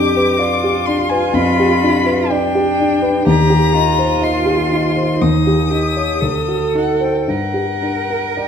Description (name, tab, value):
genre	classical, slow romantic movement for piano trio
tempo	55-65 BPM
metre	4/4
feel	rubato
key	G minor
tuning	A4 = 444 Hz
part	warm violin	melody	0.0-8.5 s	F#5 to Eb6	-20 LUFS	left 7 dB	none
part	clear cello	second line	0.0-8.5 s	D4 to Bb4	-20 LUFS	right 6 dB	none
part	dark concert grand piano	accompaniment	0.0-8.5 s	D2 to Eb5	-16 LUFS	left 1 dB	none
room	wet recital hall reverb, RT60 1.4 s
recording	none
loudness	-13 LUFS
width	side -7 dB against mid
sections	0.0-8.5 A section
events	none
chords	0.0 G7/F; 3.3 Cm/Eb; 5.2 Eb7; 6.2 D7b9; 7.3 Gm